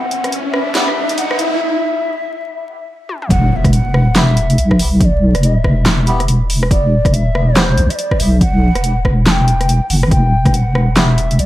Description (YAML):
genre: deep dubstep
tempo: 141 BPM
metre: 4/4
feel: swing 61% on 16ths, half-time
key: E minor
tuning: A4 = 440 Hz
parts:
  - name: breathy mellow ney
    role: melody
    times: 0.0-11.5 s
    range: C5 to A5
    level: -21 LUFS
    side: left 1 dB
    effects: dub echo
  - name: riser and impact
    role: sound effects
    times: 0.0-5.0 s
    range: none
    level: -20 LUFS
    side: equal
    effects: none
  - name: flickering grainy texture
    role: texture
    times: 0.0-1.6 s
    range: E5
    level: -33 LUFS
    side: equal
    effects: none
  - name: deep house drum kit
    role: drums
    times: 0.1-11.5 s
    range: handclaps, hi-hat, rim click, snare drum, toms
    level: -18 LUFS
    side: equal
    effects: overdrive, high-pass filter on hats, high-pass filter on snare, high-pass filter on toms
  - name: melodica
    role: stabs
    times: 0.8, 4.2-7.6, 11.0 s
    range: B3 to G4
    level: -25 LUFS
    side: equal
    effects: dub echo
  - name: deep soft wobble bass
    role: bass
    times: 3.3-11.5 s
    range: E1 to B1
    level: -13 LUFS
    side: equal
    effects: chorus
  - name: electronic kick drum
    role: drums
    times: 3.3-10.5 s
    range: none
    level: -16 LUFS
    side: equal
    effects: overdrive
room: moderate plate reverb, RT60 1.3 s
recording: dreamy mix soaked in reverb, vinyl crackle, high-pass filter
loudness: -11 LUFS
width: side -15 dB against mid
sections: 0.0-3.3 A section; 3.3-11.5 B section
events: build-up 0.0-3.3; riser 0.0-1.6; filter sweep on melodica 0.0-3.3; filter sweep 0.0-3.3; break 1.6-3.3; drum fill 3.1; drop 3.3-11.5; impact 3.3-5.0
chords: 0.0 N.C.; 3.3 E5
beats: 0.33 0.75 1.18 | 1.60 2.03 2.45 2.88 | 3.31 3.73 4.16 4.58 | 5.01 5.43 5.86 6.28 | 6.71 7.13 7.56 7.99 | 8.41 8.84 9.26 9.69 | 10.11 10.54 10.96 11.39